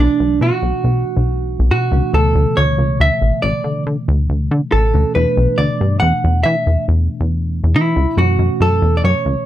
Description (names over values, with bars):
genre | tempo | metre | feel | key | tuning
progressive instrumental, band music in an uneven meter | 139 BPM | 7/4 | straight | B minor | A4 = 439 Hz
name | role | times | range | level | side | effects
vintage hollow-body jazz guitar | melody | 0.0-9.5 s | D4 to F#5 | -17 LUFS | right 2 dB | plate reverb
bell-like tine electric piano | accompaniment | 0.0-9.5 s | B2 to D4 | -23 LUFS | left 1 dB | medium stereo tremolo, plate reverb
plucky analog bass | bass | 0.0-9.4 s | A1 to E3 | -15 LUFS | equal | none
room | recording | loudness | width
light reverb | dark, warm production | -13 LUFS | side -12 dB against mid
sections
0.0-9.5 A section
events
none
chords
0.0 Bm7; 2.1 D5; 5.2 Em7; 8.2 F#m7